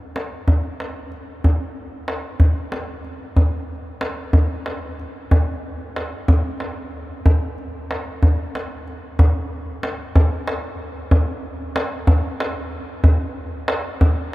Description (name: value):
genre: persian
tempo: 62 BPM (dotted quarters)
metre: 6/8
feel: straight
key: none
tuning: none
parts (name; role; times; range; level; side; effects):
- tombak; percussion; 0.2-14.2 s; none; -18 LUFS; equal; none
room: moderate huge ambient reverb, RT60 7.1 s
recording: in a vast, echoing space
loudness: -18 LUFS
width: side -18 dB against mid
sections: 0.0-9.2 A section; 9.2-14.3 B section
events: none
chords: none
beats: 0.49 | 1.45 2.42 | 3.38 4.35 | 5.32 6.28 | 7.25 8.21 | 9.18 10.15 | 11.11 12.08 | 13.04 14.01